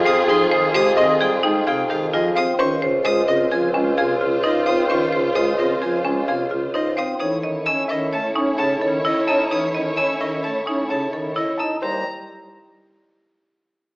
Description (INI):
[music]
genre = classical, minimalist pattern music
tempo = 130 BPM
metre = 5/4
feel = straight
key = Eb mixolydian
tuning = A4 = 440 Hz
[part]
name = dark baby grand piano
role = melody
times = 0.0-12.0 s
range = G4 to C#6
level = -25 LUFS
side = left 1 dB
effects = none
[part]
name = warm symphonic string section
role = sustained chords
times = 0.0-11.5 s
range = E4 to C#5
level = -27 LUFS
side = equal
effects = none
[part]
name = marimba with hard mallets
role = arpeggios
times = 0.0-12.0 s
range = C4 to Eb5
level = -23 LUFS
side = right 1 dB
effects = none
[part]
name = warm bassoon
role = bass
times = 0.0-12.0 s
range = Db2 to A2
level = -24 LUFS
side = equal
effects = none
[part]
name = mellow alto flute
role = second line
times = 0.1-11.5 s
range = C#4 to Ab4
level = -26 LUFS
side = equal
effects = none
[part]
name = pipe organ, flutes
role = accompaniment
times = 0.1-12.0 s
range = C3 to Eb4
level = -27 LUFS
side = equal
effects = none
[part]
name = rich violin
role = arpeggios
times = 0.1-12.0 s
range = Eb5 to E6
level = -26 LUFS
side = equal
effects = none
[sound]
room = wet recital hall reverb, RT60 1.4 s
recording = AM radio sound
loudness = -17 LUFS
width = side -26 dB against mid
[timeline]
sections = 0.0-11.8 A section; 11.8-14.0 B section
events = none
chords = 0.0 Fmadd9; 2.6 Dbmaj7; 7.2 A; 11.8 Eb